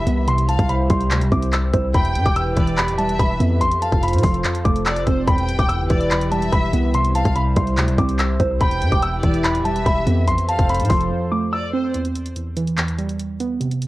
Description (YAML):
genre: hip hop, trap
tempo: 144 BPM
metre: 4/4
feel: half-time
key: E phrygian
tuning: A4 = 440 Hz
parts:
  - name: dark concert grand piano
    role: melody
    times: 0.0-11.9 s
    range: A5 to E6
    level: -24 LUFS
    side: left 1 dB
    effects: tape echo
  - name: rich studio violin section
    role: second line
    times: 0.0-11.9 s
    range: C5 to G5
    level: -28 LUFS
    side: equal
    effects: cassette tape, tape echo
  - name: warbly dusty pluck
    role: accompaniment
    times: 0.0-13.9 s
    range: E2 to C5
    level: -23 LUFS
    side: right 3 dB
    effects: chorus, cassette tape
  - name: warm analog pad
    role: sustained chords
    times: 0.0-11.9 s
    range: C3 to C5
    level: -27 LUFS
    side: equal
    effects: chorus, cassette tape
  - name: long sustained 808-style bass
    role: bass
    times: 0.0-11.1 s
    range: D1 to A2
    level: -21 LUFS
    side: equal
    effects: none
  - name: trap drum kit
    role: drums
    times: 0.1-13.9 s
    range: handclaps, hi-hat, kick drum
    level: -21 LUFS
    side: equal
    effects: cassette tape
room: little or no reverb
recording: home recording on cassette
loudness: -17 LUFS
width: side -17 dB against mid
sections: 0.0-11.9 A section; 11.9-13.9 B section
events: break 11.1-11.9, 11.9-13.9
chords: 0.3 C; 1.9 Em; 3.6 F; 5.3 Em; 6.9 C; 8.6 Em; 10.3 F; 11.9 Em